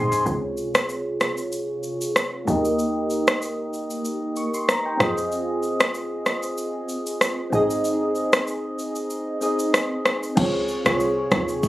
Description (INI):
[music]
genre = afrobeats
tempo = 95 BPM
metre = 4/4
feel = swing 55% on 16ths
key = unclear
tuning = A4 = 440 Hz
[part]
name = soft electric-piano-like synth keys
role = accompaniment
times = 0.0-11.7 s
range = C3 to Db6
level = -24 LUFS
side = equal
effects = chorus, phaser, low-pass filter
[part]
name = woody log drum bass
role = bass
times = 0.0-11.7 s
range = Ab1 to F2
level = -28 LUFS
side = equal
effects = none
[part]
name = afro-pop drum kit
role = drums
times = 0.1-11.7 s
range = crash cymbal, kick drum, rim click, shaker, toms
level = -22 LUFS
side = equal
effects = none
[sound]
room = moderate studio reverb, RT60 0.6 s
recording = recorded on a phone in the room, studio reverb, compression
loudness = -21 LUFS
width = side -16 dB against mid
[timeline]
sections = 0.3-10.4 A section; 10.4-11.7 B section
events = drum fill 0.0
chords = 0.3 Dbmaj7; 2.5 Eb; 5.0 Fm7; 7.5 Ab; 10.4 Dbmaj7